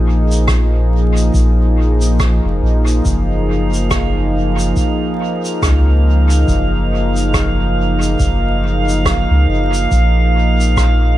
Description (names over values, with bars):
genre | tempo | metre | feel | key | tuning
ambient dub | 70 BPM | 4/4 | swing 59% on 16ths | unclear | A4 = 441 Hz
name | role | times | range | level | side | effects
warm analog pad | sustained chords | 0.0-11.2 s | F3 to Ab4 | -19 LUFS | equal | chorus
soft dub sub bass | bass | 0.0-11.2 s | F1 to Db2 | -14 LUFS | equal | none
shaker and rim click | drums | 0.3-11.0 s | none | -23 LUFS | right 1 dB | dub echo
electronic kick drum | drums | 0.5-11.0 s | none | -20 LUFS | equal | none
drifting glass-harmonics texture | texture | 3.3-11.2 s | F5 | -22 LUFS | right 4 dB | chorus, built-in reverb
room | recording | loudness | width
small room ambience | echo-heavy mix, vinyl crackle | -12 LUFS | side -14 dB against mid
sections
0.0-11.2 A section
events
none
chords
0.0 Bb5; 3.1 Gbmaj9; 9.9 Bb5